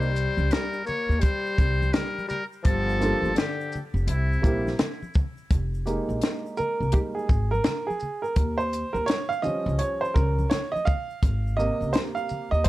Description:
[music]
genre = hip hop, jazz-hop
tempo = 84 BPM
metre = 4/4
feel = swing 62% on 16ths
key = F minor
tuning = A4 = 440 Hz
[part]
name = trumpet with metal mute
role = melody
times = 0.0-4.8 s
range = E4 to Db5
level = -30 LUFS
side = left 1 dB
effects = tape echo
[part]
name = growling tenor saxophone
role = second line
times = 0.0-4.8 s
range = C3 to Bb3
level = -32 LUFS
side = left 3 dB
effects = none
[part]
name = warm upright piano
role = accompaniment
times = 0.0-12.7 s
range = C3 to F5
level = -27 LUFS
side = right 2 dB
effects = none
[part]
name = upright bass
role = bass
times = 0.0-12.6 s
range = F1 to Eb2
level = -26 LUFS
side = equal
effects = none
[part]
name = tube shaker and congas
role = percussion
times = 0.0-12.7 s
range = none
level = -38 LUFS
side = left 1 dB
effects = none
[part]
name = compact cocktail drum kit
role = drums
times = 0.2-12.7 s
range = hi-hat, kick drum, shaker, snare drum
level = -24 LUFS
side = equal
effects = none
[sound]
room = light reverb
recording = dark, warm production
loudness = -23 LUFS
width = side -17 dB against mid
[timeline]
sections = 0.0-5.5 A section; 5.5-12.7 B section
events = upright piano solo 5.5-12.7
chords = 0.0 C7(no3); 2.7 Gm9; 4.1 C7; 5.5 Fm11; 8.4 Eb7; 11.2 Abmaj9

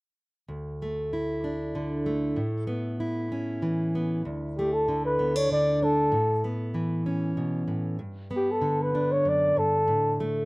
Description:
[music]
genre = folk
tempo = 96 BPM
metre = 3/4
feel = straight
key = unclear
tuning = A4 = 440 Hz
[part]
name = fingerpicked plugged-in steel-string acoustic guitar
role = accompaniment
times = 0.5-10.5 s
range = D2 to E4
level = -27 LUFS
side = equal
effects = none
[part]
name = mellow flugelhorn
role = melody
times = 4.6-10.2 s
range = G4 to D5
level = -23 LUFS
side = equal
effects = none
[sound]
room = light reverb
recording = recorded outdoors, with no room sound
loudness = -24 LUFS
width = side -24 dB against mid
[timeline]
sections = 0.5-4.2 A section; 4.2-10.5 B section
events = none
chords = 0.5 Dsus2; 2.4 Aadd9; 4.2 Dsus2; 6.1 Aadd9; 8.0 G; 9.9 Asus4

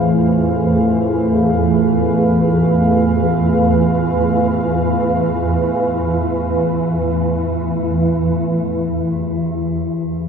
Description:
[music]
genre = dark ambient drone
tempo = free time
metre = none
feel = none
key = unclear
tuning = A4 = 444 Hz
[part]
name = dark analog pad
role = sustained chords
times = 0.0-9.1 s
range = E3 to F5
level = -16 LUFS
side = right 2 dB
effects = chorus
[part]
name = swarming drone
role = drone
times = 0.0-10.3 s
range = E2 to E3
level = -18 LUFS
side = equal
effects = built-in reverb
[part]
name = bronze singing bowl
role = texture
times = 0.0-10.3 s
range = G#4 to A4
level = -41 LUFS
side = left 4 dB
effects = none
[part]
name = tam-tam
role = percussion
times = 9.1-9.3 s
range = none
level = -40 LUFS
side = right 4 dB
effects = none
[sound]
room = moderate plate reverb, RT60 3.0 s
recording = echo-heavy mix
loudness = -14 LUFS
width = side -6 dB against mid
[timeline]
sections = 0.0-9.1 A section; 9.1-10.3 B section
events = none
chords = 0.0 F/E; 9.1 E

